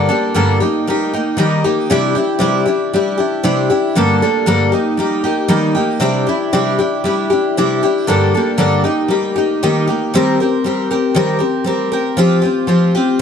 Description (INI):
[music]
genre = rock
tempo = 117 BPM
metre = 4/4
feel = straight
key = unclear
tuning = A4 = 439 Hz
[part]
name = picked twelve-string acoustic guitar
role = solo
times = 0.0-13.2 s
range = G2 to Bb4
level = -13 LUFS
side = left 1 dB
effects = none
[sound]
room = light reverb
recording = dark, warm production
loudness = -13 LUFS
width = side -7 dB against mid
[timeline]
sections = 0.0-10.1 A section; 10.1-13.2 B section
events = none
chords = 0.0 Gmadd9; 0.6 Eb; 1.9 Cadd9; 4.0 Gmadd9; 4.7 Eb; 6.0 Cadd9; 8.1 Gmadd9; 8.8 Eb; 10.1 Eb6; 12.2 Fsus2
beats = 0.34 0.86 1.38 | 1.89 2.41 2.92 3.44 | 3.95 4.47 4.98 5.50 | 6.01 6.53 7.04 7.55 | 8.07 8.58 9.10 9.61 | 10.12 10.63 11.15 11.66 | 12.17 12.68 13.20